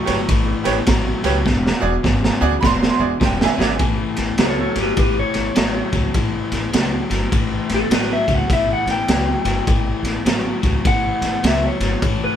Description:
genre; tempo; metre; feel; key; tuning
electric blues shuffle; 102 BPM; 4/4; swing 63% on 8ths; A mixolydian; A4 = 440 Hz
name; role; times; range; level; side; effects
bright upright piano; accompaniment; 0.0-3.8 s; F#4 to C#6; -21 LUFS; right 5 dB; none
overdriven electric guitar; riff; 0.0-12.4 s; E2 to F#3; -24 LUFS; left 4 dB; none
upright bass; bass; 0.1-12.3 s; E1 to D2; -24 LUFS; equal; none
crunchy breakbeat drum kit; drums; 0.1-12.2 s; kick drum, ride cymbal, snare drum; -19 LUFS; right 1 dB; none
electric guitar through a small old amp; melody; 4.4-12.4 s; G4 to G5; -22 LUFS; left 2 dB; none
room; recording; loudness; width
little or no reverb; band playing live in one room; -16 LUFS; side -9 dB against mid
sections
0.0-3.8 A section; 3.8-12.4 B section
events
drum fill 1.5-3.8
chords
0.0 A7; 1.5 E7; 3.8 A

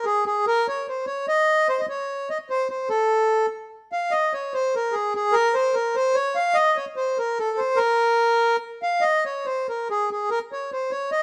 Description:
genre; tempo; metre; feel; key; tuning
musette; 147 BPM; 3/4; rubato; Bb minor; A4 = 440 Hz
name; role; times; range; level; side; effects
accordion; solo; 0.0-11.2 s; Ab4 to F5; -23 LUFS; equal; none
room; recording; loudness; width
moderate stone room reverb, RT60 1.1 s; band playing live in one room; -23 LUFS; mono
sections
0.0-11.2 A section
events
none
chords
none

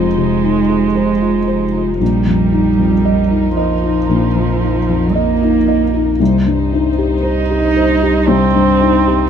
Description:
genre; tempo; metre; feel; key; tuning
neoclassical piano and strings; 58 BPM; 4/4; rubato; unclear; A4 = 441 Hz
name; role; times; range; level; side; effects
muted cello; second line; 0.0-9.3 s; F3 to Eb4; -16 LUFS; right 6 dB; none
felt-muted upright piano; accompaniment; 0.0-9.3 s; Bb1 to Eb5; -15 LUFS; left 3 dB; none
muted chamber string section; sustained chords; 0.0-9.3 s; F3 to C5; -25 LUFS; left 1 dB; none
saturated sub bass; bass; 0.0-9.3 s; F1 to C2; -21 LUFS; equal; none
room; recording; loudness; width
light reverb; minimal, uncompressed stereo recording; -12 LUFS; side -8 dB against mid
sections
0.0-9.3 A section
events
none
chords
0.0 Fm7; 2.0 Bbsus4; 6.2 Cm

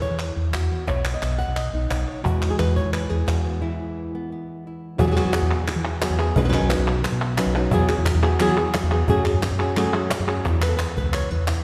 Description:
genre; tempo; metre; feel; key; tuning
flamenco; 175 BPM; 4/4; straight; E major; A4 = 439 Hz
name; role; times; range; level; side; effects
flamenco guitar; melody; 0.0-11.6 s; B2 to F#5; -26 LUFS; equal; none
woody fretless electric bass; bass; 0.0-11.6 s; B1 to F#3; -26 LUFS; equal; none
cajon; percussion; 0.0-11.6 s; none; -32 LUFS; equal; none
palmas hand claps; percussion; 0.2-11.6 s; none; -32 LUFS; equal; none
room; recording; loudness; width
wet church reverb, RT60 2.5 s; recorded in a church or concert hall; -22 LUFS; mono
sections
0.0-5.0 A section; 5.0-10.5 B section; 10.5-11.6 C section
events
break 3.6-5.0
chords
0.0 Esus2; 0.9 Badd9; 2.3 Eadd9; 3.6 E5; 5.0 Eadd9; 6.4 Badd9; 7.7 Eadd9; 9.1 F#madd9; 10.5 E5

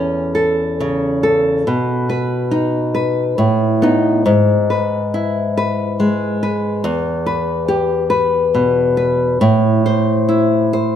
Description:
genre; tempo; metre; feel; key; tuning
romantic piece for solo classical guitar; 69 BPM; 3/4; rubato; E major, E minor from 6.9 s; A4 = 440 Hz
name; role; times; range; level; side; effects
nylon-string guitar; solo; 0.0-11.0 s; E2 to C5; -14 LUFS; left 1 dB; none
room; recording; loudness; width
moderate recital hall reverb, RT60 1.7 s; none; -14 LUFS; side -9 dB against mid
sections
0.0-11.0 A section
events
none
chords
0.0 A/E; 1.7 B; 3.4 B7/A; 4.3 E/G#; 6.9 Em; 9.4 Am

